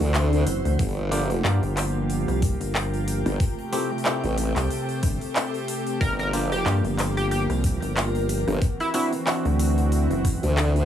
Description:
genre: glitch hop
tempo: 92 BPM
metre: 4/4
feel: swing 56% on 16ths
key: G dorian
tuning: A4 = 440 Hz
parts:
  - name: warm analog pad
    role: sustained chords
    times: 0.0-10.8 s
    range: C3 to G4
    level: -30 LUFS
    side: right 1 dB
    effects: chorus, sidechain pumping
  - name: formant-sweep wobble bass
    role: bass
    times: 0.0-10.8 s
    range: G1 to D2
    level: -23 LUFS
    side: equal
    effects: chorus
  - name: pop drum kit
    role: drums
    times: 0.0-10.8 s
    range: handclaps, hi-hat, rim click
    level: -30 LUFS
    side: equal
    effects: none
  - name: ethereal airy pad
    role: texture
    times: 0.0-10.8 s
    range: C4 to G5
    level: -32 LUFS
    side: left 1 dB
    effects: ensemble chorus, built-in reverb, phaser, sidechain pumping
  - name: rubbery square bass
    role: bass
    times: 0.5-10.4 s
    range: F#1 to G2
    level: -24 LUFS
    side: equal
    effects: tube saturation
  - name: electronic kick drum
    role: drums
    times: 0.8-10.4 s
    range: none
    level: -24 LUFS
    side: equal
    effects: none
  - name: clav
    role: stabs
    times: 1.1-9.5 s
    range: A3 to G4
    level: -30 LUFS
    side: left 1 dB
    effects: sidechain pumping, tape echo
  - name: sync lead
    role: melody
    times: 6.0-9.1 s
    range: E4 to Bb4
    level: -29 LUFS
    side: equal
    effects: chorus, tape echo
room: light reverb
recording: small room ambience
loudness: -21 LUFS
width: side -10 dB against mid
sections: 0.0-10.8 A section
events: none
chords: 0.0 D9; 0.8 Gm7; 3.4 Am7; 6.0 Gm7; 8.6 D9

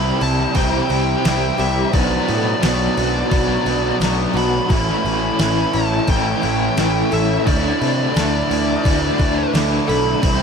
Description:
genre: rock, shoegaze and dream pop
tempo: 87 BPM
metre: 4/4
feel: straight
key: unclear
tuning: A4 = 440 Hz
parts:
  - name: fuzz lead guitar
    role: melody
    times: 0.0-10.4 s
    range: D5 to B5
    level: -24 LUFS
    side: left 1 dB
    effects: distortion, tape echo
  - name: deep dark ambient pad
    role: sustained chords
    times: 0.1-10.4 s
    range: E4 to D6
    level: -29 LUFS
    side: right 2 dB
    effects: chorus, built-in reverb
  - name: picked twelve-string acoustic guitar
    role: arpeggios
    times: 0.0-10.4 s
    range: E3 to A4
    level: -27 LUFS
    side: left 1 dB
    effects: none
  - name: biting overdriven guitar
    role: riff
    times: 0.0-10.4 s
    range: A2 to E4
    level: -25 LUFS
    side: left 13 dB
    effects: analog chorus
  - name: biting overdriven guitar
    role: riff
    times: 0.0-10.4 s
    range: A2 to D4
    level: -24 LUFS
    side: left 2 dB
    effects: tremolo
  - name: crunchy overdriven guitar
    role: riff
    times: 0.0-10.4 s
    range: A2 to F#4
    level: -24 LUFS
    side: right 12 dB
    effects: reverse reverb
  - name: fuzz picked electric bass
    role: bass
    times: 0.0-10.4 s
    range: A1 to C3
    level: -22 LUFS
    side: equal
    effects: overdrive
  - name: crisp 8-bit digital drum machine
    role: drums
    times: 0.2-10.4 s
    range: crash cymbal, kick drum, snare drum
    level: -23 LUFS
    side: equal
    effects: none
room: light reverb, digital ambience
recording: none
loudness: -15 LUFS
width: side -6 dB against mid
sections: 0.0-10.4 A section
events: none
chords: 0.0 Cmaj7; 1.9 Bm7; 4.7 A; 7.5 Dsus2

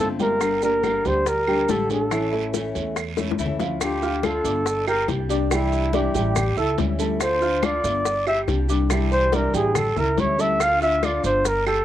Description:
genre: latin, Cuban son and guajira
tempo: 141 BPM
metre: 4/4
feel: straight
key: D minor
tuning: A4 = 439 Hz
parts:
  - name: breathy flugelhorn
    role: melody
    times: 0.0-11.8 s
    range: E4 to F5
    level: -22 LUFS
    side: equal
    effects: cassette tape
  - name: nylon-string guitar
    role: accompaniment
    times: 0.0-11.5 s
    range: C3 to G4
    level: -27 LUFS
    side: left 6 dB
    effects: cassette tape
  - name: dark baby grand piano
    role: arpeggios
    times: 0.0-11.8 s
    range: E3 to G6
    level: -28 LUFS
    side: right 5 dB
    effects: cassette tape, analog delay
  - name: upright bass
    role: bass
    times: 0.0-11.8 s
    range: G1 to E2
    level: -27 LUFS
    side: right 1 dB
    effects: none
  - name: bongos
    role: percussion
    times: 0.2-11.8 s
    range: none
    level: -29 LUFS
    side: left 9 dB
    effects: none
  - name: congas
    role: percussion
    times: 0.2-11.8 s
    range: none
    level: -30 LUFS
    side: left 8 dB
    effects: none
  - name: guiro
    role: percussion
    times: 0.2-11.8 s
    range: none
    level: -37 LUFS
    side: right 11 dB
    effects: none
  - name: maracas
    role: percussion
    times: 0.2-11.8 s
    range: none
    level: -36 LUFS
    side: right 10 dB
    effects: none
  - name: claves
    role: percussion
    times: 0.4-11.8 s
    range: none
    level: -34 LUFS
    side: right 9 dB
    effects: none
room: wet booth ambience, RT60 0.2 s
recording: home recording on cassette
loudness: -19 LUFS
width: side -12 dB against mid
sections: 0.0-3.8 A section; 3.8-11.8 B section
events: drum fill 3.2-3.8; flugelhorn solo 3.8-11.8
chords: 0.4 Gm; 2.1 A; 3.8 Dm; 4.7 Gm; 5.5 Cadd9; 6.4 A7; 7.2 Dm; 8.1 Gm; 8.9 Cadd9; 9.8 A7; 10.6 Dm

